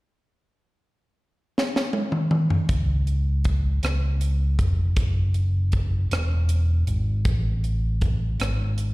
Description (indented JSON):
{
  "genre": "slow gospel",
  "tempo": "53 BPM (dotted quarters)",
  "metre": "6/8",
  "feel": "straight",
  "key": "unclear",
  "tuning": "A4 = 440 Hz",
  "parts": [
    { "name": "crisp fusion drum kit", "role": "drums", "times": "1.6-8.9 s", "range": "hi-hat, kick drum, rim click, snare drum, toms", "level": "-24 LUFS", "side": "equal", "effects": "none" },
    { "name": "fingered electric bass", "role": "bass", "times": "2.7-8.9 s", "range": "E1 to C#2", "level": "-22 LUFS", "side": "equal", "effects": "none" }
  ],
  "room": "little or no reverb",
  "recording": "live gig heard through the venue's PA, recital hall reverb",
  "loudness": "-21 LUFS",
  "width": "side -21 dB against mid",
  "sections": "0.4-2.7 A section; 2.7-8.9 B section",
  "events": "drum fill 1.6-2.7",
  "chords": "none"
}